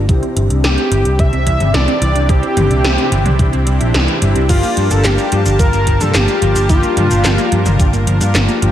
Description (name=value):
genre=synthwave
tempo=109 BPM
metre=4/4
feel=straight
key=G minor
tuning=A4 = 441 Hz
part: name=soft supersaw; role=sustained chords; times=0.0-8.7 s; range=C3 to A5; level=-23 LUFS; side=right 1 dB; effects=sidechain pumping, low-pass filter, shimmer reverb
part: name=wide unison pluck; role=arpeggios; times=0.0-8.7 s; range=E3 to E4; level=-23 LUFS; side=right 2 dB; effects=tape echo, shimmer reverb
part: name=mellow synth brass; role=stabs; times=0.0-8.7 s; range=Bb3 to G4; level=-22 LUFS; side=left 2 dB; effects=chorus, phaser, tape echo, shimmer reverb
part: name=picked electric bass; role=bass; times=0.0-8.7 s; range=G1 to G2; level=-15 LUFS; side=equal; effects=none
part: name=80s electronic pad drums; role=drums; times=0.1-8.7 s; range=crash cymbal, handclaps, hi-hat, shaker, snare drum, toms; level=-19 LUFS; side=equal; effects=gated reverb on snare and toms
part: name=electronic kick drum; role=drums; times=0.1-7.9 s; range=none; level=-14 LUFS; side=equal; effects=overdrive
part: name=wide unison lead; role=melody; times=0.6-8.3 s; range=F4 to E5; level=-19 LUFS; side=left 1 dB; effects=tape echo, shimmer reverb
room=moderate digital room reverb, RT60 1.1 s, digital ambience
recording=none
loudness=-11 LUFS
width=side -11 dB against mid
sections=0.0-4.5 A section; 4.5-8.7 B section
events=filter sweep on supersaw synth 0.0-4.5; filter sweep on synth arpeggio sound 0.0-4.5; filter sweep on analog polysynth 0.0-4.5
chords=0.1 Cadd9; 4.5 Gm7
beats=| 0.09 0.64 1.19 1.74 | 2.29 2.84 3.39 3.94 | 4.49 5.04 5.59 6.14 | 6.70 7.25 7.80 8.35